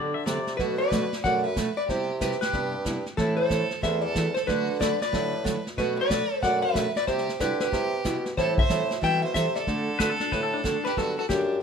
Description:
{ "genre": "country, western swing", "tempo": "185 BPM", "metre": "4/4", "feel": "swing 63% on 8ths", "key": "unclear", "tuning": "A4 = 440 Hz", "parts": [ { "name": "pedal steel guitar", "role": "second line", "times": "0.0-0.5, 10.0-10.9 s", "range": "D4 to E5", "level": "-31 LUFS", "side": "left 6 dB", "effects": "none" }, { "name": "picked steel-string acoustic guitar", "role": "accompaniment", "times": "0.0-11.4 s", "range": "B2 to B4", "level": "-30 LUFS", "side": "right 3 dB", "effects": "none" }, { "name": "mellow bassoon", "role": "bass", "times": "0.0-11.6 s", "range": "E2 to D3", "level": "-31 LUFS", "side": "left 1 dB", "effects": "none" }, { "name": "vintage brush drum kit", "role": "drums", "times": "0.3-11.6 s", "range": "brushed snare drum, hi-hat, kick drum, snare drum", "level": "-31 LUFS", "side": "left 1 dB", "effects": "none" }, { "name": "vintage hollow-body jazz guitar", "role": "melody", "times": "0.6-11.6 s", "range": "G4 to G5", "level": "-27 LUFS", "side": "equal", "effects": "none" }, { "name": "clear fiddle", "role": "second line", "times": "0.6-11.6 s", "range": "D4 to E5", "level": "-33 LUFS", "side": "right 2 dB", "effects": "none" } ], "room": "light reverb", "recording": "none", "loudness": "-23 LUFS", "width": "side -6 dB against mid", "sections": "0.6-11.0 A section", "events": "none", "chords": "0.0 Gmaj7; 0.6 Bm7; 1.9 Cmaj7; 3.2 Am; 4.5 D6; 5.8 Bm7; 7.1 C; 8.4 Am7; 9.7 D7; 11.0 Gmaj7" }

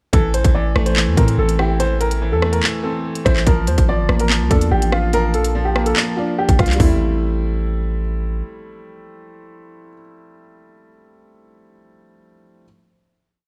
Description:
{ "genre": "hip hop, drill", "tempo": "144 BPM", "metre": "4/4", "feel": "half-time", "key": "A phrygian", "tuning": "A4 = 440 Hz", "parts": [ { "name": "warm upright piano", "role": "melody", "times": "0.1-8.0 s", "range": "E4 to D5", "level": "-24 LUFS", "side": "equal", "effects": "none" }, { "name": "bright grand piano", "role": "accompaniment", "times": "0.1-12.6 s", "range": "E3 to F4", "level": "-26 LUFS", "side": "equal", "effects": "none" }, { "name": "long sustained 808-style bass", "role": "bass", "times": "0.1-8.4 s", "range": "G1 to A2", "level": "-21 LUFS", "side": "equal", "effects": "none" }, { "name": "drill drum kit", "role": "drums", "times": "0.1-6.9 s", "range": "handclaps, hi-hat, kick drum, rim click, toms", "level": "-20 LUFS", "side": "equal", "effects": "none" } ], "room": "light reverb", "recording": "none", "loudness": "-17 LUFS", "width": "mono", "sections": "0.1-6.8 hook; 6.8-10.1 final chord", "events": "none", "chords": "0.1 Am; 3.5 Bbmaj7; 6.8 Am7" }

